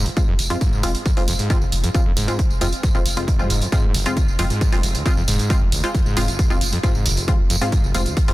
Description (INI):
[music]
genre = driving peak-time techno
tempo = 135 BPM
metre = 4/4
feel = straight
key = F minor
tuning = A4 = 440 Hz
[part]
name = screaming distorted acid line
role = riff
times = 0.0-8.3 s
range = F1 to Ab2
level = -25 LUFS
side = equal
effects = distortion, chorus, sidechain pumping, digital delay
[part]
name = saturated sub bass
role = bass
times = 0.0-8.3 s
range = F1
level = -24 LUFS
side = equal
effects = overdrive, sidechain pumping, low-pass filter
[part]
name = electronic hi-hat and tambourine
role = drums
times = 0.1-8.3 s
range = none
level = -26 LUFS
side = right 3 dB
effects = sidechain pumping on hats, sidechain pumping on perc
[part]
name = filtered dub chord stab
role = stabs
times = 0.2-8.3 s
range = Ab3 to F4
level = -26 LUFS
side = equal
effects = chorus, sidechain pumping, digital delay
[part]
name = electronic kick drum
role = drums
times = 0.2-8.3 s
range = none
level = -20 LUFS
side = equal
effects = none
[sound]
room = little or no reverb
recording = dense, heavily limited modern master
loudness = -17 LUFS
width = side -18 dB against mid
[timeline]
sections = 0.0-8.3 A section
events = none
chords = 0.0 Fm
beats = | 0.17 0.61 1.06 1.50 | 1.95 2.39 2.83 3.28 | 3.72 4.17 4.61 5.06 | 5.50 5.95 6.39 6.83 | 7.28 7.72 8.17